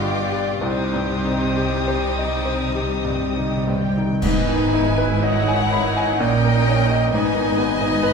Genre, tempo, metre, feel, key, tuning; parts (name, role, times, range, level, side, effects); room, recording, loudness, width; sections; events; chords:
classical, romantic movement for piano and orchestra; 48-66 BPM; 3/4; rubato; C minor, G# minor from 4.2 s; A4 = 441 Hz
clear baby grand piano; melody; 0.0-8.1 s; C2 to B5; -22 LUFS; equal
dark chamber violin section; melody; 0.0-8.1 s; F#5 to Eb6; -28 LUFS; left 2 dB
rich chamber violin section; second line; 0.0-8.1 s; Eb4 to D#5; -27 LUFS; left 2 dB
silver concert flute; second line; 0.0-3.0 s; C5 to Eb5; -30 LUFS; left 4 dB
rich studio viola section; accompaniment; 0.0-8.1 s; G3 to E4; -27 LUFS; equal
rich symphonic cello section; bass; 0.0-8.1 s; G2 to C3; -28 LUFS; right 2 dB
warm chamber double bass section; bass; 0.0-8.1 s; G1 to C2; -26 LUFS; right 3 dB
timpani; percussion; 0.6-4.2 s; C3; -29 LUFS; equal
clash cymbals and concert bass drum; percussion; 4.2-6.1 s; -29 LUFS; equal
wet recital hall reverb, RT60 1.4 s; heard from further back in the room; -17 LUFS; side -5 dB against mid
0.0-4.2 A section; 4.2-8.1 B section
timpani fill 0.6-4.2; band accent 4.2-5.2
0.0 G7; 0.6 Cm; 4.2 G#m; 6.2 D#7/A#; 7.1 G#m